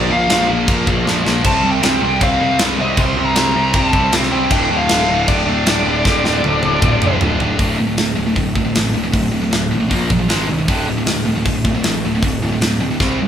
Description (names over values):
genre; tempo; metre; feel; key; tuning
heavy metal; 156 BPM; 4/4; straight; D minor; A4 = 443 Hz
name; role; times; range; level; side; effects
high-gain lead guitar; melody; 0.0-7.2 s; D5 to C6; -18 LUFS; left 1 dB; distortion
high-gain distorted guitar; riff; 0.0-13.3 s; D2 to C4; -17 LUFS; equal; distortion
fuzz picked electric bass; bass; 0.0-13.3 s; D1 to C2; -22 LUFS; equal; overdrive
tight metal drum kit; drums; 0.3-13.1 s; crash cymbal, hi-hat, kick drum, snare drum, toms; -18 LUFS; equal; none
room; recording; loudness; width
moderate large studio reverb, RT60 0.8 s; band playing live in one room; -13 LUFS; side -9 dB against mid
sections
0.0-7.6 A section; 7.6-13.3 B section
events
drum fill 1.1-1.4, 6.1-7.6, 13.0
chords
0.0 Bb5; 1.4 C5; 4.5 D5; 9.9 Bb5; 10.3 G#5; 10.7 D5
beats
0.30 0.68 1.06 | 1.45 1.83 2.22 2.60 | 2.98 3.37 3.75 4.13 | 4.52 4.90 5.29 5.67 | 6.05 6.44 6.82 7.21 | 7.59 7.98 8.37 8.75 | 9.14 9.53 9.91 10.30 | 10.69 11.07 11.46 11.85 | 12.23 12.62 13.01